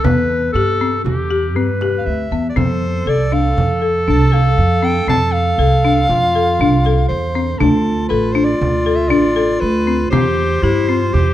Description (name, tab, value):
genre	contemporary instrumental, chamber music in an uneven meter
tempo	119 BPM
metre	5/4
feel	straight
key	unclear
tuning	A4 = 440 Hz
part	clear clarinet	second line	0.0-11.3 s	E4 to B4	-20 LUFS	left 1 dB	none
part	folk marimba with hard mallets	arpeggios	0.0-11.2 s	B3 to A4	-19 LUFS	left 4 dB	none
part	upright bass	bass	0.0-11.3 s	A1 to G2	-18 LUFS	right 2 dB	none
part	frame drum	percussion	0.0-11.3 s	none	-23 LUFS	right 2 dB	none
part	breathy soprano saxophone	melody	2.0-11.3 s	A4 to A5	-20 LUFS	equal	none
room	moderate concert hall reverb, RT60 2.2 s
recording	dark, warm production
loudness	-13 LUFS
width	side -13 dB against mid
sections	0.0-11.3 A section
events	none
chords	0.0 Cmaj7/E; 2.6 F6; 7.6 Dm; 10.1 C/E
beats	| 0.05 0.55 1.05 1.56 2.06 | 2.57 3.07 3.58 4.08 4.58 | 5.09 5.59 6.09 6.60 7.10 | 7.61 8.11 8.61 9.12 9.62 | 10.13 10.63 11.14